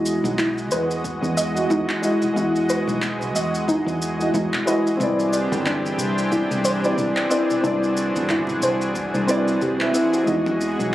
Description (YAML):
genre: sunset chillout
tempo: 91 BPM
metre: 4/4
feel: swing 58% on 16ths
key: unclear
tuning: A4 = 440 Hz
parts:
  - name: dark baby grand piano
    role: accompaniment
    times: 0.0-10.9 s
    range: G#3 to E5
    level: -23 LUFS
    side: equal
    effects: auto-pan, low-pass filter, tape echo
  - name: lush unison pad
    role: sustained chords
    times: 0.0-10.9 s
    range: E3 to D#5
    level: -26 LUFS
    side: equal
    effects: chorus
  - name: soft round pluck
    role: arpeggios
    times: 0.0-10.6 s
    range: D4 to D#5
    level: -27 LUFS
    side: equal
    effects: chorus, tape echo
  - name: fingered electric bass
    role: bass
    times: 0.0-10.9 s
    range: G1 to E2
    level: -27 LUFS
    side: equal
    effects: none
  - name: electronic shaker, handclaps and congas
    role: drums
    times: 0.1-10.9 s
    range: none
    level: -30 LUFS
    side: equal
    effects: studio reverb
  - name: congas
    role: percussion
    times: 0.2-10.9 s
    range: none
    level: -39 LUFS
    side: left 1 dB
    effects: none
  - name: electronic kick drum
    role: drums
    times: 0.4-10.4 s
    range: none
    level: -33 LUFS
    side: equal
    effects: studio reverb
room: moderate plate reverb, RT60 2.8 s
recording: recorded on a phone in the room, club reverb, compression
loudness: -19 LUFS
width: side -14 dB against mid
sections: 0.0-10.9 A section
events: filter sweep on grand piano 0.0-10.9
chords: 0.0 Emaj9; 5.0 Cmaj9; 10.3 Emaj9